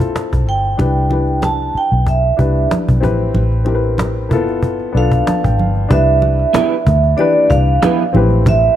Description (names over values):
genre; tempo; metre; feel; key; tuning
lush 1970s-style soul; 94 BPM; 4/4; swing 54% on 16ths; C major; A4 = 441 Hz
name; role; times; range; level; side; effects
warm baby grand piano; accompaniment; 0.0-8.8 s; E3 to A5; -19 LUFS; left 4 dB; none
vintage muted fingered electric bass; bass; 0.0-8.7 s; G1 to D2; -15 LUFS; equal; none
cajon; drums; 0.0-8.6 s; none; -19 LUFS; equal; none
vibraphone with medium hard mallets; melody; 0.5-8.8 s; D5 to A5; -17 LUFS; right 3 dB; none
congas; percussion; 0.8-8.6 s; none; -22 LUFS; right 2 dB; none
electric guitar through a small old amp; riff; 6.5-8.0 s; B3 to B4; -20 LUFS; right 8 dB; analog chorus
room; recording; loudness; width
light reverb, small room ambience; none; -12 LUFS; side -11 dB against mid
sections
0.0-5.9 A section; 5.9-8.8 B section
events
grand piano fill 4.9-5.9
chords
0.0 Dm7 (rootless); 0.8 Cmaj7; 3.0 Am9; 4.3 G13; 5.9 Cmaj7; 8.1 Am9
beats
0.15 | 0.79 1.43 2.07 2.71 | 3.35 3.99 4.63 5.27 | 5.91 6.55 7.18 7.82 | 8.46